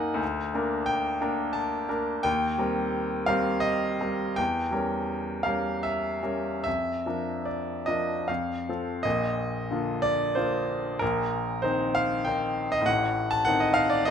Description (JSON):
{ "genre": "classical, romantic character piece for solo piano", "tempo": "73-102 BPM", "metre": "3/4", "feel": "rubato", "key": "Bb major", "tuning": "A4 = 439 Hz", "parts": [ { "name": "bright grand piano", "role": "solo", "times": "0.0-14.1 s", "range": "A1 to Bb5", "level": "-25 LUFS", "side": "equal", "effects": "none" } ], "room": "light reverb", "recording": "close, detailed microphones", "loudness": "-25 LUFS", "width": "side -7 dB against mid", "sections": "0.0-9.0 A section; 9.0-14.1 B section", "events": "none", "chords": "0.2 Bb/D; 2.3 Cm7/Eb; 4.4 Edim7; 6.7 Bb/F; 8.3 F; 9.0 Bb; 11.0 Cm7/Bb; 12.9 Adim" }